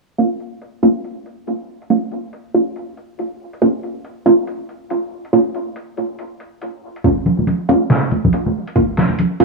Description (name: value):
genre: deep dubstep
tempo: 140 BPM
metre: 4/4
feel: swing 61% on 16ths, half-time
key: Bb minor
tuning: A4 = 442 Hz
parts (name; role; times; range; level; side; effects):
- filtered dub chord stab; stabs; 0.2-9.4 s; Bb3 to F4; -16 LUFS; right 2 dB; chorus, dub echo
- trip hop sampler-style drum kit; drums; 0.2-9.4 s; hi-hat, snare drum; -18 LUFS; right 1 dB; none
- electronic kick drum; drums; 7.0-8.9 s; none; -20 LUFS; equal; none
- congas; percussion; 7.0-9.4 s; none; -18 LUFS; equal; dub echo
room: light reverb, digital ambience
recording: dry, gritty hardware recording, low-pass filter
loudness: -16 LUFS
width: side -2 dB against mid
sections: 0.2-9.4 A section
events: filter sweep 0.2-9.4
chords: 0.2 Bbm